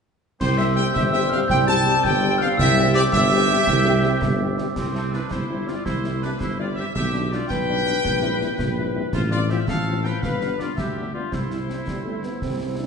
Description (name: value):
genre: military-style march for wind band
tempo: 110 BPM (dotted quarters)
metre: 6/8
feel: straight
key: C major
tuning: A4 = 440 Hz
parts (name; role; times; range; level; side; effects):
- clear trumpet section; melody; 0.4-12.9 s; G4 to A5; -27 LUFS; right 1 dB; none
- glockenspiel with soft plastic mallets; second line; 0.4-4.7 s; C6 to A6; -26 LUFS; equal; none
- small flute group; second line; 0.4-4.7 s; C5 to A5; -25 LUFS; left 1 dB; none
- warm woodwind section; second line; 0.4-12.9 s; C4 to G5; -29 LUFS; left 2 dB; none
- warm trombone section; sustained chords; 0.4-4.5 s; G3 to C4; -30 LUFS; left 1 dB; none
- mellow tuba; bass; 0.4-12.9 s; G1 to D2; -24 LUFS; right 2 dB; none
- concert snare drum, clash cymbals and concert bass drum; drums; 0.4-12.9 s; none; -29 LUFS; equal; none
- mellow French horn section; accompaniment; 0.6-12.9 s; F3 to G4; -31 LUFS; left 6 dB; none
- mellow euphonium; second line; 11.9-12.9 s; G3 to D4; -30 LUFS; right 4 dB; none
room: wet recital hall reverb, RT60 1.7 s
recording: recorded in a church or concert hall, nothing above 10.7 kHz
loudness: -19 LUFS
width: side -6 dB against mid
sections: 0.4-4.8 A section; 4.8-12.9 B section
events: none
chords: 0.4 C; 6.9 G/B; 8.0 C7/Bb; 9.1 F/A; 10.2 G7; 11.3 C